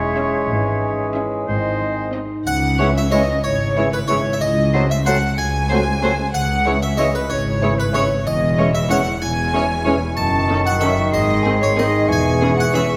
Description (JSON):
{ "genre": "cinematic, playful, whimsical film cue", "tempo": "62 BPM (dotted quarters)", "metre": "6/8", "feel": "straight", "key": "C# minor", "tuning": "A4 = 439 Hz", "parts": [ { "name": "clear oboe", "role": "second line", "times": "0.0-13.0 s", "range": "B#4 to C#6", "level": "-29 LUFS", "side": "equal", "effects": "none" }, { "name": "mellow clarinet", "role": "second line", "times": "0.0-13.0 s", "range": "F#4 to A4", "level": "-32 LUFS", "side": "equal", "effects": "none" }, { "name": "silver concert flute", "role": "second line", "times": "0.0-13.0 s", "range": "B4 to A5", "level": "-27 LUFS", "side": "equal", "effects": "none" }, { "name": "clear bassoon", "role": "accompaniment", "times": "0.0-13.0 s", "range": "D#3 to G#3", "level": "-28 LUFS", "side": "equal", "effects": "none" }, { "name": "warm French horn section", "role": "sustained chords", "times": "0.0-12.8 s", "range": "D#3 to C#4", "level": "-32 LUFS", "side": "equal", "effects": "none" }, { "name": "concert harp", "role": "arpeggios", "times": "0.0-13.0 s", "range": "E2 to C#5", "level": "-27 LUFS", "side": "equal", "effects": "none" }, { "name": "rich studio double bass section", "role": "bass", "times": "0.0-12.9 s", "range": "E1 to C#2", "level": "-27 LUFS", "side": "equal", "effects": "none" }, { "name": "rich symphonic cello section", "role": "bass", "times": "0.0-12.9 s", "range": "C#2 to G#2", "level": "-28 LUFS", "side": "equal", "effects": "none" }, { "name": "rich studio violin section", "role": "melody", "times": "0.2-12.8 s", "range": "G#4 to E5", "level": "-32 LUFS", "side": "equal", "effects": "none" }, { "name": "rich studio violin section", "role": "second line", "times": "0.2-13.0 s", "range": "G#4 to A5", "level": "-32 LUFS", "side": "equal", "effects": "none" }, { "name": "rich studio viola section", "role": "accompaniment", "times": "0.2-12.8 s", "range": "D#3 to F#4", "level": "-28 LUFS", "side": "equal", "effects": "none" }, { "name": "harpsichord", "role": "melody", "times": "2.5-13.0 s", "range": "B4 to A5", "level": "-27 LUFS", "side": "equal", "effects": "none" }, { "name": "triangle", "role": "percussion", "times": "2.5-3.7 s", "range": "none", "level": "-43 LUFS", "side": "equal", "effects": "none" } ], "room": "moderate scoring stage reverb, RT60 1.5 s", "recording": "none", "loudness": "-18 LUFS", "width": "mono", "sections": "0.0-2.5 A section; 2.5-13.0 B section", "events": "none", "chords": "0.5 C#m/G#; 1.5 G#; 2.5 C#m; 4.4 G#7b9/C#; 6.3 C#m; 8.3 C#m/E; 10.2 D#m7b5/F#; 11.1 G#; 12.1 C#m/E", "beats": "| 0.50 1.48 | 2.46 3.44 | 4.41 5.37 | 6.33 7.29 | 8.25 9.21 | 10.16 11.12 | 12.08" }